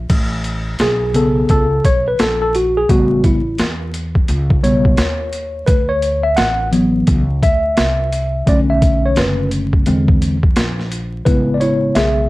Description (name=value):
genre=hip hop, jazz-hop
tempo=86 BPM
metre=4/4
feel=swing 63% on 16ths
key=A major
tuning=A4 = 439 Hz
part: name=upright bass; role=bass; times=0.0-12.3 s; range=F#1 to E2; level=-20 LUFS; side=equal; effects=none
part: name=boom bap sampler-style drum kit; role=drums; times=0.1-12.2 s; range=crash cymbal, hi-hat, kick drum, snare drum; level=-16 LUFS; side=equal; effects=overdrive, vintage 12-bit sampler grit
part: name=tine electric piano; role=accompaniment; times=0.8-12.3 s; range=C#3 to F#5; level=-15 LUFS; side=equal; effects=medium stereo tremolo
room=light reverb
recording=vinyl crackle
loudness=-13 LUFS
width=side -19 dB against mid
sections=0.1-11.3 A section; 11.3-12.3 B section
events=tine electric piano solo 0.1-11.3, 11.3-12.3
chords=0.1 Amaj9; 2.9 A7; 5.7 D6; 8.5 Bm7; 9.9 Eaug7; 11.3 Amaj9